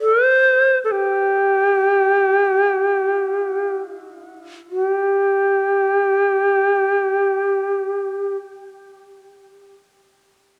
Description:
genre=japanese traditional, Japanese chamber music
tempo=free time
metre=none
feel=none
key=unclear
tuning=A4 = 440 Hz
part: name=bright reedy long shakuhachi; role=solo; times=0.0-8.4 s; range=G4 to C5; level=-18 LUFS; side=equal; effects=none
room=moderate spring reverb, RT60 1.9 s, studio reverb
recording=cassette tape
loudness=-18 LUFS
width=mono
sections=0.0-4.7 A section; 4.7-8.4 B section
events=slowing down 0.0-4.7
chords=none

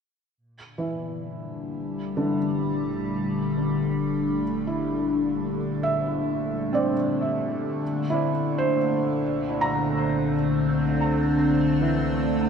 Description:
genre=ambient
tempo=free time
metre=none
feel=none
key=G dorian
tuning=A4 = 441 Hz
part: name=evolving wavetable pad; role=sustained chords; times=1.1-12.5 s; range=Bb2 to D4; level=-24 LUFS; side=left 1 dB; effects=chorus, built-in reverb, phaser
part: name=deep rumbling drone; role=bass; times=1.9-12.5 s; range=G1 to C2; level=-40 LUFS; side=right 1 dB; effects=built-in reverb
part: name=felt-muted upright piano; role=arpeggios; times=0.8-12.5 s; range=D3 to Bb5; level=-28 LUFS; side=right 3 dB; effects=tape echo, shimmer reverb
room=wet echo chamber reverb, RT60 2.4 s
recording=echo-heavy mix, nothing above 10.3 kHz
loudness=-22 LUFS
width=side -6 dB against mid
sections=0.4-12.5 A section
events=fade-in on synth drone 0.4-12.5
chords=0.4 Gmadd9; 7.8 Csus2

